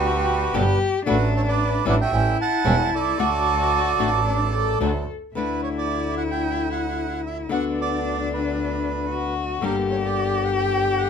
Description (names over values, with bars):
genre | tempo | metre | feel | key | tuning
tango | 113 BPM | 4/4 | rubato | D major | A4 = 436 Hz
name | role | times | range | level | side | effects
bandoneon | melody | 0.0-11.1 s | F#4 to A5 | -25 LUFS | right 6 dB | none
warm cello | second line | 0.0-11.1 s | D4 to A4 | -26 LUFS | left 6 dB | none
bandoneon | stabs | 0.0-5.0 s | F#3 to D4 | -31 LUFS | right 6 dB | none
clear double bass | bass | 0.0-11.1 s | E1 to D2 | -26 LUFS | right 2 dB | none
flamenco guitar | accompaniment | 0.5-11.1 s | B2 to G4 | -27 LUFS | left 5 dB | none
room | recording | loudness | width
moderate studio reverb, RT60 0.5 s | minimal, uncompressed stereo recording | -20 LUFS | side -7 dB against mid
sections
0.0-5.4 A section; 5.4-11.1 A section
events
none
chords
0.0 G; 1.1 D/A; 2.1 A7; 3.2 D; 7.5 Bm/D; 9.6 Gm